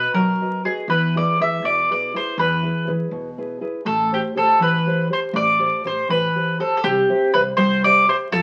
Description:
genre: italian folk, Italian serenade.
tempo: 81 BPM (dotted quarters).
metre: 6/8.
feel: straight.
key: A minor.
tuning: A4 = 441 Hz.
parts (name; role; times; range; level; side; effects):
mandolin; melody; 0.0-8.4 s; G4 to E5; -20 LUFS; equal; none.
nylon-string guitar; accompaniment; 0.0-8.4 s; B2 to E5; -25 LUFS; equal; none.
upright bass; bass; 0.0-8.4 s; A1 to E3; -33 LUFS; equal; none.
room: wet studio reverb, RT60 0.5 s.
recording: very old 78 rpm record, vinyl crackle.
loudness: -19 LUFS.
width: mono.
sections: 0.0-6.8 A section; 6.8-8.4 B section.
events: none.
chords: 0.0 B; 0.9 E; 3.8 Am7; 6.8 C.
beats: 0.14 | 0.88 1.63 | 2.37 3.11 | 3.85 4.58 | 5.33 6.08 | 6.83 7.58 | 8.32.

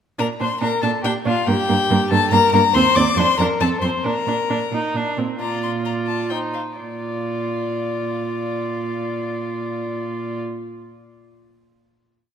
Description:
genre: quick classical-period movement for string quartet.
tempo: 124-142 BPM.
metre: 3/4.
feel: straight.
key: Bb major.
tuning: A4 = 439 Hz.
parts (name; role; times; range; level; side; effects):
rich violin; melody; 0.2-10.4 s; D5 to D6; -23 LUFS; left 8 dB; none.
dark violin; second line; 0.2-10.4 s; F4 to D5; -24 LUFS; left 2 dB; none.
rich viola; accompaniment; 0.2-10.4 s; Bb3 to F4; -25 LUFS; right 2 dB; none.
dark cello; bass; 0.2-10.4 s; Eb2 to Bb2; -24 LUFS; right 5 dB; none.
room: moderate concert hall reverb, RT60 2.4 s.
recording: none.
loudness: -18 LUFS.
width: side -8 dB against mid.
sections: 0.2-5.4 A section; 5.4-6.8 coda; 6.8-9.6 final chord.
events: slowing down 3.4-6.8.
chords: 0.2 Bb; 1.5 Gm; 2.7 Cm; 3.2 Bb; 3.6 F; 4.0 Bb; 6.1 F5/Bb; 6.8 Bb.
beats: | 0.19 0.62 1.05 | 1.47 1.90 2.32 | 2.75 3.18 3.60 | 4.04 4.49 4.94 | 5.40 5.84 6.30 | 6.78 7.26 7.74 | 8.21 8.69 9.16.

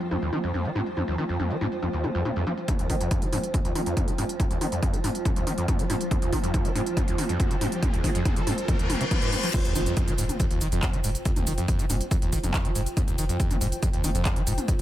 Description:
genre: driving peak-time techno.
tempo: 140 BPM.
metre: 4/4.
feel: straight.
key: unclear.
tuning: A4 = 440 Hz.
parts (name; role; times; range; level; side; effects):
swarming drone; drone; 0.0-9.6 s; F3; -37 LUFS; equal; none.
techno drum kit; drums; 0.0-14.8 s; crash cymbal, handclaps, hi-hat, shaker, toms; -32 LUFS; left 1 dB; low-pass filter on hats, low-pass filter on toms, low-pass filter on cymbals, low-pass filter on perc, low-pass filter on snare, low-pass filter on room.
granular cloud pad; texture; 0.0-14.8 s; F4 to G5; -34 LUFS; right 2 dB; built-in reverb, sidechain pumping.
screaming distorted acid line; riff; 0.1-14.8 s; F1 to F3; -29 LUFS; equal; distortion, wide subtle chorus, sidechain pumping, digital delay.
electronic kick drum; drums; 2.7-14.8 s; none; -26 LUFS; equal; none.
riser, reverse cymbal and impact; sound effects; 5.8-11.3 s; none; -34 LUFS; left 1 dB; none.
saturated sub bass; bass; 9.7-14.8 s; F1; -30 LUFS; equal; tube saturation, sidechain pumping, low-pass filter.
room: little or no reverb.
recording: none.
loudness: -23 LUFS.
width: side -13 dB against mid.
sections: 0.0-2.7 A section; 2.7-9.5 B section; 9.5-14.8 C section.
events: build-up 2.7-9.5; filter sweep on acid bass 2.7-9.5; riser 5.8-9.5; reverse cymbal 8.7-9.5; drop 9.5-14.8; impact 9.5-11.3.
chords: 0.0 F5.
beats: 0.11 0.54 | 0.97 1.40 1.83 2.25 | 2.68 3.11 3.54 3.97 | 4.40 4.83 5.25 5.68 | 6.11 6.54 6.97 7.40 | 7.83 8.26 8.68 9.11 | 9.54 9.97 10.40 10.83 | 11.26 11.68 12.11 12.54 | 12.97 13.40 13.83 14.26 | 14.68.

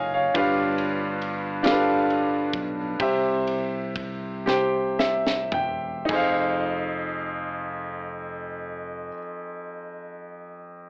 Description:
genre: slow gospel.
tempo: 34-47 BPM (dotted quarters).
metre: 6/8.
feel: straight.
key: F minor.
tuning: A4 = 441 Hz.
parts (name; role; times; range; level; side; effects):
clear grand piano; accompaniment; 0.0-10.9 s; F2 to Ab5; -27 LUFS; equal; none.
fingered electric bass; bass; 0.0-9.1 s; E1 to C2; -39 LUFS; equal; none.
crisp fusion drum kit; drums; 0.3-6.4 s; crash cymbal, kick drum, ride cymbal, snare drum, toms; -34 LUFS; equal; none.
room: moderate small room reverb, RT60 0.6 s.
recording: cassette tape, AM radio sound.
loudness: -26 LUFS.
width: mono.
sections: 0.0-6.1 A section; 6.1-9.6 B section.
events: slowing down 0.3-6.1; drum fill 4.5-6.1; grand piano fill 4.5-6.1.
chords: 0.3 G7; 3.0 C; 6.1 Fm7.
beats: | 0.35 1.64 | 2.99 4.46 | 6.09 7.84.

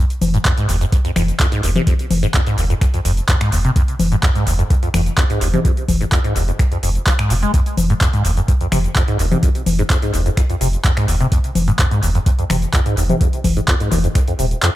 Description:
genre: acid house.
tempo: 127 BPM.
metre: 4/4.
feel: straight.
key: F minor.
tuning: A4 = 440 Hz.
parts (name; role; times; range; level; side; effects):
liquid acid bass; riff; 0.0-14.7 s; Eb2 to Ab3; -20 LUFS; equal; phaser, overdrive, wide subtle chorus, sidechain pumping, analog delay.
booming analog drum machine; drums; 0.1-14.7 s; congas, finger snaps, handclaps, hi-hat, shaker; -21 LUFS; left 2 dB; analog delay.
warm sub bass; bass; 0.2-14.5 s; Eb1 to F1; -20 LUFS; equal; tube saturation, sidechain pumping.
electronic kick drum; drums; 0.5-14.3 s; none; -16 LUFS; equal; overdrive.
room: little or no reverb.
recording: echo-heavy mix.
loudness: -14 LUFS.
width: side -15 dB against mid.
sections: 0.0-14.8 A section.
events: none.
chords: 0.0 Fm.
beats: 0.45 0.92 1.40 | 1.87 2.34 2.81 3.29 | 3.76 4.23 4.70 5.18 | 5.65 6.12 6.59 7.07 | 7.54 8.01 8.48 8.96 | 9.43 9.90 10.37 10.85 | 11.32 11.79 12.26 12.74 | 13.21 13.68 14.15 14.62.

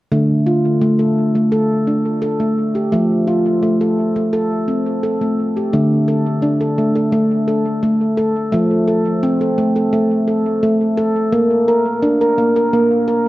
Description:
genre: world meditative, meditative tuned percussion.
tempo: 86 BPM.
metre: 4/4.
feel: straight.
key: D minor.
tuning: A4 = 440 Hz.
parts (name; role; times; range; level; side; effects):
handpan; solo; 0.1-13.3 s; D3 to Bb4; -14 LUFS; equal; dub echo.
room: moderate echo chamber reverb, RT60 1.7 s, small room ambience.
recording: echo-heavy mix, cassette tape.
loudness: -14 LUFS.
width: side -17 dB against mid.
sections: 0.1-5.7 A section; 5.7-13.3 B section.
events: none.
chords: 0.1 Dm; 2.9 F; 5.7 D5; 8.5 F; 11.3 N.C..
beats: | 0.12 0.82 1.52 2.23 | 2.93 3.63 4.33 5.04 | 5.74 6.44 7.14 7.84 | 8.54 9.24 9.94 10.64 | 11.34 12.04 12.73.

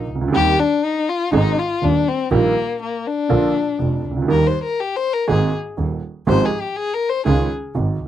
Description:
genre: tango.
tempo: 121 BPM.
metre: 4/4.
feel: rubato.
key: Eb major.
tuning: A4 = 440 Hz.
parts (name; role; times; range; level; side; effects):
warm violin; second line; 0.0-7.5 s; Bb3 to C5; -20 LUFS; left 5 dB; none.
warm upright piano; accompaniment; 0.0-8.1 s; Eb1 to Ab4; -20 LUFS; right 5 dB; none.
rich double bass; bass; 0.0-8.1 s; F1 to Eb2; -21 LUFS; right 1 dB; none.
room: little or no reverb.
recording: dry, close 1970s-style studio recording.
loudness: -17 LUFS.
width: side -11 dB against mid.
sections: 0.0-8.1 A section.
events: violin solo 0.0-8.1.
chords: 0.3 Cm/Eb; 1.3 Ab; 2.3 Eb/Bb; 3.3 Bb; 4.3 Eb; 5.3 Abadd9; 6.3 Fmadd9/Ab; 7.3 Dbadd9.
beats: | 0.34 0.83 1.33 1.82 | 2.32 2.81 3.31 3.80 | 4.30 4.79 5.29 5.78 | 6.27 6.76 7.26 7.75.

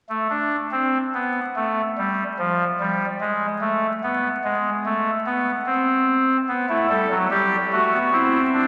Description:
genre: classical, baroque-style 4-part fugue for pipe organ.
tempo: 73 BPM.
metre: 4/4.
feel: straight.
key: unclear.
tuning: A4 = 441 Hz.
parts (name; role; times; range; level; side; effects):
pipe organ, soft reed; solo; 0.1-8.7 s; F3 to A4; -22 LUFS; equal; none.
room: wet church reverb, RT60 3.5 s.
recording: vinyl crackle.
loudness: -22 LUFS.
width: mono.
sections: 0.0-8.7 A section.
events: none.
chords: 0.0 N.C.; 6.5 Em (rootless); 8.1 Cadd9.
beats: 0.73 1.56 2.39 | 3.21 4.04 4.86 5.67 | 6.49 7.31 8.12.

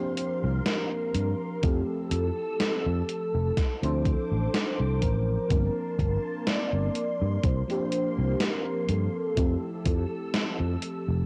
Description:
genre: vaporwave.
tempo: 62 BPM.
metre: 4/4.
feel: swing 54% on 16ths.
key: unclear.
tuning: A4 = 440 Hz.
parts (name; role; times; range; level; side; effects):
warm velvety synth lead; melody; 0.0-10.8 s; A4 to D5; -35 LUFS; equal; chorus, cassette tape, tape echo.
FM electric piano with soft pad layer; accompaniment; 0.0-11.3 s; F3 to C5; -35 LUFS; equal; lush chorus, cassette tape, tape echo.
soft string machine; sustained chords; 0.0-11.3 s; Bb3 to E6; -42 LUFS; equal; phaser, ensemble chorus, cassette tape.
gated 80s digital drum machine; drums; 0.2-11.0 s; hi-hat, snare drum; -33 LUFS; equal; gated reverb, gated reverb snare, cassette tape.
sustaining fretless electric bass; bass; 0.4-11.2 s; F1 to G2; -29 LUFS; equal; none.
electronic kick drum; drums; 1.6-10.1 s; none; -29 LUFS; equal; cassette tape.
room: light reverb, digital ambience.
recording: home recording on cassette.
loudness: -28 LUFS.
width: mono.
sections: 0.0-11.3 A section.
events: none.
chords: 0.0 C7sus4; 1.6 Fmaj7; 3.6 Dm7; 5.5 Gm11; 7.4 C7sus4; 9.4 Fmaj7.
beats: 0.66 | 1.63 2.60 3.57 4.53 | 5.50 6.47 7.44 8.40 | 9.37 10.34.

